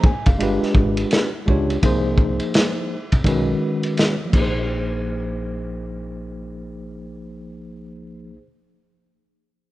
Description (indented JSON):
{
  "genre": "hip hop, jazz-hop",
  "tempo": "84 BPM",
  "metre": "4/4",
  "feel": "swing 61% on 16ths",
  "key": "Bb minor",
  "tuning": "A4 = 437 Hz",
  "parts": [
    { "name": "tine electric piano", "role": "accompaniment", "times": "0.0-8.5 s", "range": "D#3 to Ab5", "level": "-24 LUFS", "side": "equal", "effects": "medium stereo tremolo" },
    { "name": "crunchy breakbeat drum kit", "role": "drums", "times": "0.0-4.5 s", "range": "crash cymbal, hi-hat, kick drum, ride cymbal, snare drum", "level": "-19 LUFS", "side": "equal", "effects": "vintage 12-bit sampler grit" },
    { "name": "woody fretless electric bass", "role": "bass", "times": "0.3-8.4 s", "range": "Gb1 to Db2", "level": "-27 LUFS", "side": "equal", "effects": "none" }
  ],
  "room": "small room ambience",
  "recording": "rough home demo mix",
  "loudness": "-18 LUFS",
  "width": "side -16 dB against mid",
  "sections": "0.0-4.7 A section; 4.7-7.5 B section",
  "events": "none",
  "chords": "0.4 G7b9; 1.8 Ab69/C; 3.3 Badd9; 4.3 Bb5"
}